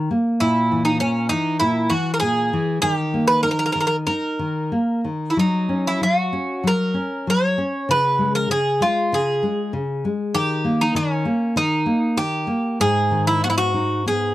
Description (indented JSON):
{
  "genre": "fado-style ballad",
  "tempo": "97 BPM",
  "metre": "4/4",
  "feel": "rubato",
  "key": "unclear",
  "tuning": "A4 = 438 Hz",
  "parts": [
    { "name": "nylon-string guitar", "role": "accompaniment", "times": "0.0-14.3 s", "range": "G#2 to D#4", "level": "-21 LUFS", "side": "left 1 dB", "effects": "none" },
    { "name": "Greek bouzouki", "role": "melody", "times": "0.4-14.3 s", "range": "C#4 to C#5", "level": "-20 LUFS", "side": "right 1 dB", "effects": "none" }
  ],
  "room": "light reverb",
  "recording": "dry, close 1970s-style studio recording",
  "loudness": "-18 LUFS",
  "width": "side -15 dB against mid",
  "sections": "0.0-14.3 A section",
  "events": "none",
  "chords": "0.4 A#7(b5, no3); 2.8 D#5; 5.4 F#; 7.9 C#5; 10.3 D#7; 12.8 G#m"
}